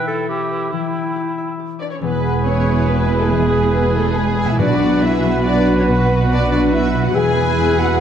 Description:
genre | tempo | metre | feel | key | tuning
cinematic, heroic adventure film score | 140 BPM | 3/4 | straight | unclear | A4 = 440 Hz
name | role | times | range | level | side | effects
bright clarinet | second line | 0.0-8.0 s | E4 to B4 | -27 LUFS | equal | none
concert flute | second line | 0.0-8.0 s | G#4 to G#5 | -27 LUFS | left 1 dB | none
mellow cor anglais | second line | 0.0-8.0 s | E4 to G#5 | -29 LUFS | right 3 dB | none
concert harp | arpeggios | 0.0-8.0 s | B2 to E5 | -25 LUFS | left 9 dB | none
rich symphonic violin section | melody | 1.8-8.0 s | G#4 to G#5 | -25 LUFS | left 3 dB | none
mellow French horn section | sustained chords | 1.8-8.0 s | G#3 to G#4 | -21 LUFS | left 2 dB | none
rich symphonic viola section | accompaniment | 2.0-8.0 s | F#4 to B4 | -26 LUFS | right 1 dB | none
warm trombone section | sustained chords | 2.0-8.0 s | B2 to G#3 | -25 LUFS | right 2 dB | none
clear trumpet | stabs | 2.0-8.0 s | B4 | -26 LUFS | right 3 dB | none
dark symphonic cello section | bass | 2.0-8.0 s | E2 to B2 | -22 LUFS | right 3 dB | none
dark symphonic double bass section | bass | 2.0-8.0 s | E1 to B1 | -21 LUFS | right 4 dB | none
rich symphonic violin section | second line | 2.5-8.0 s | E4 to G#4 | -29 LUFS | left 2 dB | none
timpani | percussion | 4.6-5.2 s | B2 | -24 LUFS | equal | none
room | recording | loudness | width
wet scoring stage reverb, RT60 2.0 s | dark, warm production | -14 LUFS | side -8 dB against mid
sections
0.0-2.0 A section; 2.0-8.0 B section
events
none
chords
0.0 Em; 2.0 E; 4.6 Bm; 7.2 E

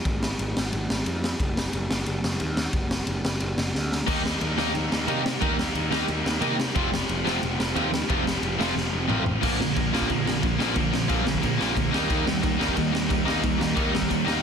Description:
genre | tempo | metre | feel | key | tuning
punk rock | 180 BPM | 4/4 | straight | Bb major | A4 = 439 Hz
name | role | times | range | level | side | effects
fuzz picked electric bass | bass | 0.1-14.4 s | F1 to C3 | -30 LUFS | equal | overdrive
raw garage drum kit | drums | 0.1-14.4 s | crash cymbal, kick drum, ride cymbal, snare drum, toms | -27 LUFS | equal | none
distorted electric guitar | riff | 4.1-14.4 s | F2 to Eb4 | -29 LUFS | left 15 dB | overdrive
distorted electric guitar | riff | 4.1-14.4 s | Bb2 to G4 | -28 LUFS | right 15 dB | overdrive
distorted electric guitar | riff | 4.1-14.4 s | F2 to Eb4 | -29 LUFS | left 1 dB | overdrive
room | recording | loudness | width
little or no reverb | dense, heavily limited modern master | -22 LUFS | side -7 dB against mid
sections
0.0-9.4 A section; 9.4-14.4 B section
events
drum fill 3.7-4.1, 8.8-9.4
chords
0.0 Fm/Ab; 1.4 N.C.; 4.1 Eb; 6.8 F; 9.4 Bb; 11.9 Eb

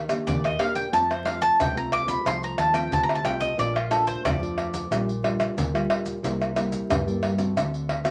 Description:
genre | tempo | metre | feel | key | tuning
samba and choro | 90 BPM | 4/4 | straight | unclear | A4 = 440 Hz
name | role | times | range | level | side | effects
nylon-string guitar | accompaniment | 0.0-8.1 s | G2 to G4 | -32 LUFS | equal | none
vintage muted fingered electric bass | bass | 0.0-8.1 s | Bb1 to G2 | -35 LUFS | equal | none
maracas, pandeiro, tamborim and surdo | percussion | 0.1-8.1 s | none | -29 LUFS | equal | none
bowl-back mandolin | melody | 0.3-6.2 s | F4 to D6 | -27 LUFS | equal | none
room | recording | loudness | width
wet studio ambience, RT60 0.5 s | vinyl crackle | -25 LUFS | mono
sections
0.0-8.1 A section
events
mandolin solo 0.0-8.1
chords
0.0 Ebmaj7; 0.9 F; 3.6 Bbmaj7; 4.9 Gm7/Bb; 6.2 C7; 7.6 D7

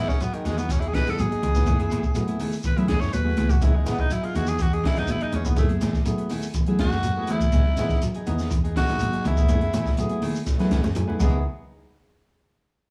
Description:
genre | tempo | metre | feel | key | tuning
afrobeat | 123 BPM | 4/4 | straight | C# minor | A4 = 441 Hz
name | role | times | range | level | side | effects
raspy tenor saxophone | melody | 0.0-10.0 s | D#3 to C#5 | -31 LUFS | equal | none
barky tine electric piano | accompaniment | 0.0-11.4 s | A3 to G#5 | -35 LUFS | equal | overdrive
clean electric guitar | arpeggios | 0.0-11.4 s | C#3 to F#3 | -34 LUFS | equal | none
semi-hollow electric guitar | stabs | 0.0-11.4 s | E3 to G#4 | -35 LUFS | equal | spring reverb
compact cocktail drum kit | drums | 0.1-11.3 s | crash cymbal, hi-hat, kick drum, snare drum | -27 LUFS | equal | none
shekere | percussion | 0.1-11.3 s | none | -37 LUFS | equal | none
hollow-body short-scale fingered electric bass | bass | 0.5-11.4 s | G#1 to F#3 | -29 LUFS | equal | none
congas | percussion | 0.5-11.3 s | none | -33 LUFS | equal | none
room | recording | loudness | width
moderate large studio reverb, RT60 0.9 s | band playing live in one room, small room ambience | -23 LUFS | mono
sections
0.0-11.5 A section; 11.5-12.9 B section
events
tenor saxophone solo 0.0-11.5; tine electric piano fill 10.5-11.5; drum fill 10.7-11.5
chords
0.0 C#m9; 1.7 F#m11; 3.6 C#m9 (rootless); 5.6 F#m11; 7.5 C#m9; 9.5 F#m11; 11.2 C#m9; 11.5 N.C.

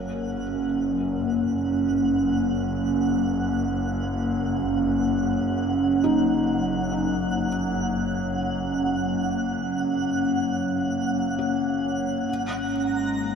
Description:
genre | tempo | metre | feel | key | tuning
ambient | free time | none | none | F# major | A4 = 439 Hz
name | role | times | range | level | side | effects
warbly tape-like pad | sustained chords | 0.0-13.4 s | F#3 to D#4 | -24 LUFS | equal | chorus, built-in reverb, phaser
felt-muted upright piano | arpeggios | 0.0-13.4 s | C#4 to A#4 | -32 LUFS | left 1 dB | tape echo
clear symphonic double bass section | bass | 0.0-13.4 s | F#1 to G#1 | -32 LUFS | equal | none
twinkling granular texture | texture | 0.0-13.4 s | F#5 to A#5 | -33 LUFS | right 2 dB | built-in reverb
room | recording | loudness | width
wet huge ambient reverb, RT60 8.0 s | none | -22 LUFS | side -6 dB against mid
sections
0.0-13.4 A section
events
fade-in on synth texture 0.0-13.4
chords
0.0 F#; 12.3 G#m

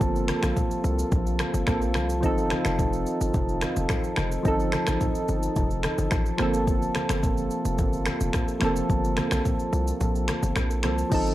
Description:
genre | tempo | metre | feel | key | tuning
afrobeats | 108 BPM | 4/4 | straight | G minor | A4 = 440 Hz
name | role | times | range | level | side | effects
soft electric-piano-like synth keys | accompaniment | 0.0-11.3 s | F3 to A4 | -27 LUFS | right 1 dB | chorus
mellow French horn section | sustained chords | 0.0-11.3 s | C3 to A4 | -34 LUFS | left 1 dB | none
hard-hitting 808-style bass | bass | 0.0-11.3 s | F1 to C2 | -28 LUFS | equal | none
afro-pop drum kit | drums | 0.0-11.3 s | crash cymbal, finger snaps, kick drum, rim click, shaker | -28 LUFS | equal | none
congas | percussion | 0.3-11.0 s | none | -34 LUFS | left 1 dB | none
room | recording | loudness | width
little or no reverb | dry, gritty hardware recording, cassette tape | -23 LUFS | side -15 dB against mid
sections
0.0-11.1 A section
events
kick muted 10.0-11.1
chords
0.0 Gm11; 2.2 F7; 6.4 Gm11

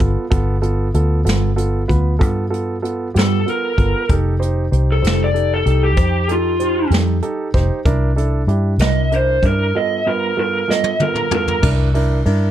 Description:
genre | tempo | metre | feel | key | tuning
slow blues | 64 BPM (dotted quarters) | 12/8 | straight | unclear | A4 = 441 Hz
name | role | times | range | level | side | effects
clear upright piano | accompaniment | 0.0-12.5 s | G2 to C5 | -22 LUFS | right 3 dB | none
vintage muted fingered electric bass | bass | 0.0-12.5 s | F1 to G2 | -17 LUFS | equal | none
jazz brush drum kit | drums | 0.0-12.4 s | crash cymbal, hi-hat, kick drum, ride cymbal, snare drum, toms | -20 LUFS | equal | none
lead guitar through a small cranked amp | melody | 3.2-11.6 s | F4 to Eb5 | -18 LUFS | equal | overdrive
room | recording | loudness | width
light reverb | dark, warm production | -15 LUFS | side -11 dB against mid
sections
0.0-11.6 A section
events
drum fill 10.7-11.6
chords
0.0 G9; 4.1 F9; 7.9 C9; 9.8 G9; 11.6 C9

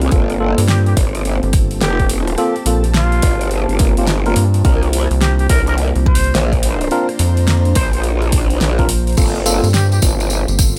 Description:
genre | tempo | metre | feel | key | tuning
glitch hop | 106 BPM | 4/4 | swing 63% on 16ths | G minor | A4 = 440 Hz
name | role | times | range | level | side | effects
dark analog pad | sustained chords | 0.0-10.8 s | Bb3 to C5 | -28 LUFS | equal | chorus, sidechain pumping
growl bass | bass | 0.0-10.5 s | F1 to C2 | -20 LUFS | equal | chorus
pop drum kit | drums | 0.0-10.8 s | crash cymbal, hi-hat, rim click, snare drum | -25 LUFS | equal | small room ambience
ethereal airy pad | texture | 0.0-10.8 s | Bb3 to Bb5 | -32 LUFS | equal | none
tine electric piano | stabs | 0.1-9.7 s | Bb3 to Bb4 | -23 LUFS | equal | sidechain pumping, digital delay
electronic kick drum | drums | 0.1-10.7 s | none | -18 LUFS | equal | small room ambience
rubbery square bass | bass | 0.6-10.8 s | G1 to G2 | -16 LUFS | equal | tube saturation
growling trumpet | melody | 0.7-10.0 s | F4 to C5 | -27 LUFS | equal | vintage 12-bit sampler grit, digital delay
tambourine | percussion | 9.2-10.8 s | none | -25 LUFS | equal | none
room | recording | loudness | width
digital ambience | none | -15 LUFS | mono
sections
0.0-10.8 A section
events
none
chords
0.1 Gm11; 4.6 C9sus4; 9.2 Gm11

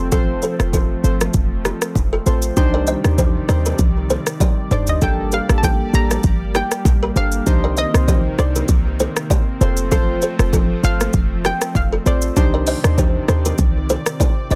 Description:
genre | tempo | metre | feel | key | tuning
afrobeats | 98 BPM | 4/4 | swing 55% on 16ths | unclear | A4 = 440 Hz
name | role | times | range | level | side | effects
warm analog keys | accompaniment | 0.0-14.6 s | Bb3 to C5 | -26 LUFS | equal | chorus
lush unison pad | sustained chords | 0.0-14.6 s | C3 to D5 | -30 LUFS | equal | chorus
short 808-style bass | bass | 0.0-14.6 s | F1 to Eb2 | -21 LUFS | equal | none
buzzing kalimba | riff | 0.1-14.6 s | D4 to Eb5 | -26 LUFS | equal | digital delay
afro-pop drum kit | drums | 0.1-14.6 s | hi-hat, kick drum, rim click, shaker, toms | -21 LUFS | equal | soft clipping on snare
congas and bongos | percussion | 0.1-14.4 s | none | -30 LUFS | equal | none
hollow square pluck | melody | 4.7-14.6 s | D5 to Bb5 | -27 LUFS | equal | chorus, digital delay
room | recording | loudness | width
little or no reverb | dense, heavily limited modern master | -18 LUFS | mono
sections
0.0-5.0 A section; 5.0-14.6 B section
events
drum fill 4.4-5.0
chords
0.0 F; 2.6 Cmadd9; 5.0 Gmadd9; 7.5 Cmadd9; 9.6 F; 12.4 Cmadd9

